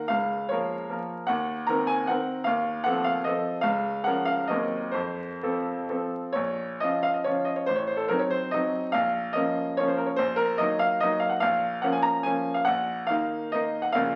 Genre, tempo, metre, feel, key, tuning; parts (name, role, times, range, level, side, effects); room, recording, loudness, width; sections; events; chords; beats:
classical, romantic triple-time dance for piano with dotted rhythms; 118-162 BPM; 3/4; rubato; Bb minor; A4 = 439 Hz
bright baby grand piano; solo; 0.0-14.2 s; A1 to Bb5; -27 LUFS; equal
moderate large studio reverb, RT60 0.8 s; very old 78 rpm record, vinyl crackle; -27 LUFS; mono
0.0-6.4 A section; 6.4-14.2 B section
0.1 Bbm/Db; 1.3 Cm7b5/Eb; 2.5 F7/Eb; 3.6 Bbm/Db; 4.5 Cm7b5/Eb; 4.9 F; 6.4 Bbm; 7.7 Adim7; 8.9 Bbm; 10.2 Ebm/Bb; 11.4 Bbm; 12.7 Ebm/Bb
| 0.10 0.50 0.90 | 1.29 1.68 2.08 | 2.46 2.85 3.26 | 3.64 4.05 4.50 | 4.95 5.43 5.91 | 6.36 6.82 7.27 | 7.69 8.11 8.54 | 8.95 9.36 9.79 | 10.19 10.61 11.02 | 11.41 11.83 12.26 | 12.67 13.09 13.53 | 13.95